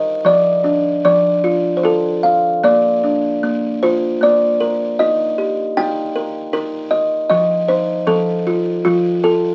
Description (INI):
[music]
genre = children's music, lullaby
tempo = 77 BPM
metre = 3/4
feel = rubato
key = Bb major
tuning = A4 = 439 Hz
[part]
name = buzzing kalimba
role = solo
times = 0.0-9.5 s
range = F3 to G5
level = -16 LUFS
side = equal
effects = none
[sound]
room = moderate studio ambience, RT60 0.5 s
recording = very old 78 rpm record, vinyl crackle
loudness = -16 LUFS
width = mono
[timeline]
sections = 0.0-9.5 A section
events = none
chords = 0.3 Dm/F; 1.8 N.C.; 2.6 Bb; 5.0 Eb; 7.3 F7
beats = | 0.26 1.04 1.84 | 2.64 3.44 4.22 | 4.99 5.76 6.52 | 7.29 8.06 8.84